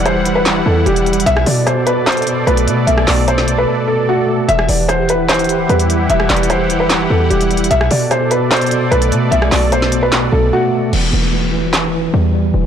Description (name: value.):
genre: hip hop, trap.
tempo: 149 BPM.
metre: 4/4.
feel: half-time.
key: E minor.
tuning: A4 = 440 Hz.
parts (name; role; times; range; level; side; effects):
felt-muted upright piano; melody; 0.0-10.9 s; F#4 to E5; -16 LUFS; left 1 dB; digital delay.
mellow tine electric piano; accompaniment; 0.0-12.7 s; B2 to A3; -19 LUFS; equal; medium stereo tremolo, low-pass filter.
sweeping resonant pad; sustained chords; 0.0-10.9 s; B2 to F#5; -20 LUFS; right 2 dB; chorus.
short 808-style bass; bass; 0.0-12.7 s; E1 to B2; -17 LUFS; equal; none.
trap drum kit; drums; 0.1-11.8 s; crash cymbal, handclaps, hi-hat, rim click, snare drum; -19 LUFS; equal; none.
downlifter; sound effects; 10.9-12.7 s; none; -23 LUFS; equal; none.
room: little or no reverb.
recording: blown-out, overdriven recording, overdrive.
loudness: -12 LUFS.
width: side -8 dB against mid.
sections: 0.0-10.9 A section; 10.9-12.7 B section.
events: break 3.7-4.5; drums muted 10.5-10.9; hi-hats muted 10.9-12.7; filter sweep on tine electric piano 10.9-12.7.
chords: 0.0 Emadd9; 1.3 Bm7; 4.5 Emadd9; 7.7 Bm7; 10.9 Em.